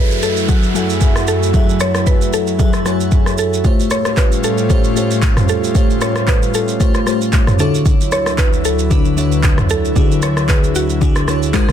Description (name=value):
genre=amapiano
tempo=114 BPM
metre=4/4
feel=swing 55% on 16ths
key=unclear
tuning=A4 = 440 Hz
part: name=mallet-like synth pluck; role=melody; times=0.0-11.7 s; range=F#4 to C#5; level=-22 LUFS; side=right 1 dB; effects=chorus, tape echo
part: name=crystalline FM electric piano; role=accompaniment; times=0.0-11.7 s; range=D3 to G#5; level=-19 LUFS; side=left 2 dB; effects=chorus
part: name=airy breathy pad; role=sustained chords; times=0.0-11.7 s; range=D2 to E#4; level=-20 LUFS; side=equal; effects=chorus
part: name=downlifter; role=sound effects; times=0.0-3.6 s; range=none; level=-27 LUFS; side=right 2 dB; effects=none
part: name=deep house drum kit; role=drums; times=0.1-11.7 s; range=handclaps, kick drum, rim click, shaker, toms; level=-15 LUFS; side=equal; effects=none
room=little or no reverb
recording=dense, heavily limited modern master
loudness=-12 LUFS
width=side -9 dB against mid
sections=0.0-11.7 A section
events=none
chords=0.0 F#m7; 3.6 A7alt; 7.6 Dmaj9